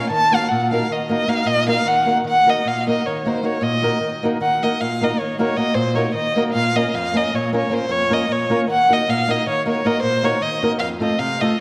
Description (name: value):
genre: balkan folk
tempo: 309 BPM (eighths)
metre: 11/8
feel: straight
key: Eb dorian sharp4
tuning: A4 = 440 Hz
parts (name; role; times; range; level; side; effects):
- dark violin; melody; 0.0-11.6 s; C5 to A5; -22 LUFS; equal; none
- flamenco guitar; accompaniment; 0.0-11.6 s; F2 to Bb4; -23 LUFS; equal; none
room: wet concert hall reverb, RT60 2.2 s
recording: none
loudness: -19 LUFS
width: mono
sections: 0.0-4.4 A section; 4.4-11.6 A section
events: none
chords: 0.1 Ebm; 6.5 Bbm; 8.7 Ebm; 10.8 F